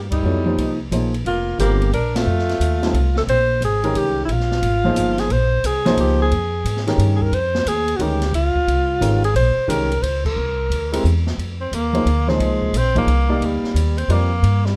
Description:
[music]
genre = modal jazz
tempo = 178 BPM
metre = 3/4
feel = swing 65% on 8ths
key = Bb dorian from 3.3 s, F dorian from 11.4 s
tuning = A4 = 443 Hz
[part]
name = upright bass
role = bass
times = 0.0-14.8 s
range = F1 to Ab2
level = -22 LUFS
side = equal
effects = none
[part]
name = warm alto saxophone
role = melody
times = 0.1-11.0 s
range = Eb4 to C5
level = -23 LUFS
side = equal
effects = plate reverb
[part]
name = clear tenor saxophone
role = second line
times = 0.1-3.2, 11.6-14.8 s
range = G3 to D4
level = -27 LUFS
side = equal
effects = none
[part]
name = open jazz drum kit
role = drums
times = 0.1-14.7 s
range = crash cymbal, hi-hat, kick drum, ride cymbal, snare drum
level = -32 LUFS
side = equal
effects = none
[part]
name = warm upright piano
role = accompaniment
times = 0.2-14.3 s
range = D3 to F5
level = -24 LUFS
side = equal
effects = none
[sound]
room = light reverb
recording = dark, warm production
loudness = -19 LUFS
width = mono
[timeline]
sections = 0.0-3.3 A section; 3.3-11.4 B section; 11.4-14.8 C section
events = band accent 0.1, 2.1, 10.2; tenor saxophone solo 11.4-14.8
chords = 0.0 Fm11; 1.2 Gm/F; 2.3 F7; 3.3 Bbm9; 10.4 C7; 11.4 Fm11; 13.4 Gm

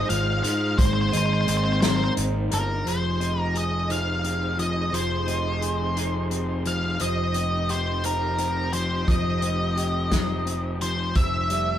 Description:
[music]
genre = post-rock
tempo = 58 BPM (dotted quarters)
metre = 6/8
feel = straight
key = F minor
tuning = A4 = 439 Hz
[part]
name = octave-fuzz lead guitar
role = melody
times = 0.0-11.8 s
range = Bb4 to F5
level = -27 LUFS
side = left 1 dB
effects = distortion
[part]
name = clear symphonic string section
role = sustained chords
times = 0.0-11.8 s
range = F3 to Ab4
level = -34 LUFS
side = right 1 dB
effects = none
[part]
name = clean electric guitar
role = arpeggios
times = 0.0-11.8 s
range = F2 to C5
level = -30 LUFS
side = left 2 dB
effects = none
[part]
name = vibraphone with hard mallets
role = arpeggios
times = 0.0-11.8 s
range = C5 to E5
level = -34 LUFS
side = right 3 dB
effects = none
[part]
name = fuzz picked electric bass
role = bass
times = 0.0-11.8 s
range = F1 to Ab2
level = -27 LUFS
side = equal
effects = overdrive
[part]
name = loose indie drum kit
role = drums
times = 0.1-11.7 s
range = hi-hat, kick drum, snare drum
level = -27 LUFS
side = equal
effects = none
[sound]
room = moderate studio reverb, RT60 0.5 s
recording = band playing live in one room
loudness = -22 LUFS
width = side -10 dB against mid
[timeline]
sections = 0.0-2.9 A section; 2.9-11.8 B section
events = none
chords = 0.0 Fm7/Ab; 0.8 Abadd9; 2.9 Fm7; 7.0 Cm/F; 11.2 C/F

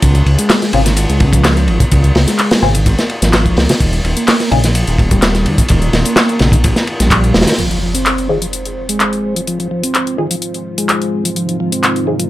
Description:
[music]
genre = breakbeat, breaks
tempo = 127 BPM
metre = 4/4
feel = straight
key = F minor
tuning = A4 = 439 Hz
[part]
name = mellow tonewheel organ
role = riff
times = 0.0-12.2 s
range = C3 to C4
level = -18 LUFS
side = equal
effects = slow rotary speaker, overdrive, vintage 12-bit sampler grit, low-pass filter
[part]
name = dark detuned saw bass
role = bass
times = 0.0-7.5 s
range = Eb1 to Eb2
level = -14 LUFS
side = equal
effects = none
[part]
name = crunchy breakbeat drum kit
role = drums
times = 0.0-7.6 s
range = hi-hat, kick drum, ride cymbal, snare drum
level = -14 LUFS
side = equal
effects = none
[part]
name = punchy analog drum machine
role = drums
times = 0.0-12.3 s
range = handclaps, hi-hat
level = -17 LUFS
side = left 1 dB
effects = none
[part]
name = filtered dub chord stab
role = stabs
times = 0.7-4.6, 8.3-12.2 s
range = Bb3 to Ab4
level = -19 LUFS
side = left 3 dB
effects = phaser, lush chorus, dub echo
[part]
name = dark analog pad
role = sustained chords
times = 8.5-12.3 s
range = Ab3 to C5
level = -22 LUFS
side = equal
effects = chorus, vintage 12-bit sampler grit, sidechain pumping
[part]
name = impact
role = sound effects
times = 7.6-9.5 s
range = none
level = -24 LUFS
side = equal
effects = none
[sound]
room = little or no reverb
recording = none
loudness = -11 LUFS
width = side -15 dB against mid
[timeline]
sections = 0.0-7.6 A section; 7.6-12.3 B section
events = impact 7.6-9.5; filter sweep on tonewheel organ 7.6-12.3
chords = 0.0 Db; 3.8 Eb5; 7.6 Fm7

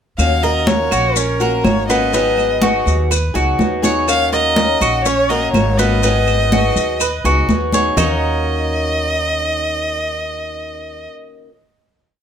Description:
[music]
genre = latin, Cuban son and guajira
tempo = 123 BPM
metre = 4/4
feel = straight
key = Eb minor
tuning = A4 = 440 Hz
[part]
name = warm violin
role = melody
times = 0.2-11.1 s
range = Bb4 to F5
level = -19 LUFS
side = right 1 dB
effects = none
[part]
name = picked old ladder-braced acoustic guitar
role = accompaniment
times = 0.2-11.5 s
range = Eb3 to Ab4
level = -21 LUFS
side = left 4 dB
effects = none
[part]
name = upright bass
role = bass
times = 0.2-11.1 s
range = Ab1 to Eb2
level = -20 LUFS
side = equal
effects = none
[part]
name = claves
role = percussion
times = 0.2-8.1 s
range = none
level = -27 LUFS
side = right 10 dB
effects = none
[part]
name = congas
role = percussion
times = 0.2-8.1 s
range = none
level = -20 LUFS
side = equal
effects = none
[part]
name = maracas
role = percussion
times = 0.2-8.1 s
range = none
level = -26 LUFS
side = left 7 dB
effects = none
[part]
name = Cuban tres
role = arpeggios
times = 0.4-11.1 s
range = Cb4 to Db5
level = -20 LUFS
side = right 2 dB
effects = none
[sound]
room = moderate studio ambience, RT60 0.5 s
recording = none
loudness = -13 LUFS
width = side -8 dB against mid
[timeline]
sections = 0.2-8.0 montuno (vamp); 8.0-11.9 final chord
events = none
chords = 0.2 Ebm7; 2.1 Abm7; 4.1 Ebm7; 6.0 Abm7; 8.0 Ebm7

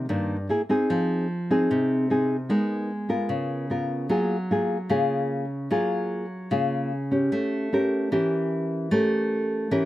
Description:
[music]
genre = bossa nova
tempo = 149 BPM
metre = 4/4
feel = straight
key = unclear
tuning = A4 = 440 Hz
[part]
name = nylon-string guitar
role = solo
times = 0.0-9.9 s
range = G2 to Bb4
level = -23 LUFS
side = equal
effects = none
[sound]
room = little or no reverb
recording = close, detailed microphones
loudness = -23 LUFS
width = side -15 dB against mid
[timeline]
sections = 0.0-4.1 A section; 4.1-9.9 B section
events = none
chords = 0.5 C7alt; 0.9 Fm7; 2.5 Abmadd9; 3.3 Db6; 4.1 F#maj9; 7.3 A7b9

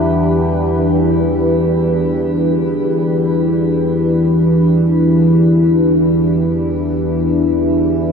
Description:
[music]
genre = dark ambient drone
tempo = free time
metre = none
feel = none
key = E minor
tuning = A4 = 440 Hz
[part]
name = dark analog pad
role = sustained chords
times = 0.0-8.1 s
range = E3 to B4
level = -15 LUFS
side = right 1 dB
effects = chorus, shimmer reverb
[part]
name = overtone-sweeping drone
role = drone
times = 0.0-8.1 s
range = E2 to E3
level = -15 LUFS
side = left 1 dB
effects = chorus, built-in reverb
[sound]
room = wet cathedral reverb, RT60 6.6 s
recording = none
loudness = -12 LUFS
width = side -6 dB against mid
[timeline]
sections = 0.8-8.1 A section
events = none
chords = 0.0 Em

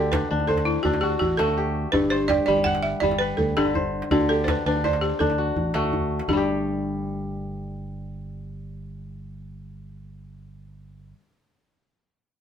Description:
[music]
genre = west african traditional, West African string and xylophone music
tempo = 110 BPM (dotted quarters)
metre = 12/8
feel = straight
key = unclear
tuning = A4 = 444 Hz
[part]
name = balafon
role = melody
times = 0.0-11.1 s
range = E4 to F#5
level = -24 LUFS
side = right 2 dB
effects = none
[part]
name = kora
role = arpeggios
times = 0.0-11.3 s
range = G2 to F#5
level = -24 LUFS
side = left 2 dB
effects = none
[part]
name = fingered electric bass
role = bass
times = 0.0-11.1 s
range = G1 to D2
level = -30 LUFS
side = right 1 dB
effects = none
[part]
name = djembe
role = percussion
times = 0.1-6.5 s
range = none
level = -30 LUFS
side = right 1 dB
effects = none
[sound]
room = moderate studio reverb, RT60 0.5 s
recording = band playing live in one room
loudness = -21 LUFS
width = side -8 dB against mid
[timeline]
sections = 0.0-6.3 A section; 6.3-10.6 B section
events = none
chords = 0.0 D; 1.9 G; 4.1 D; 6.3 N.C.

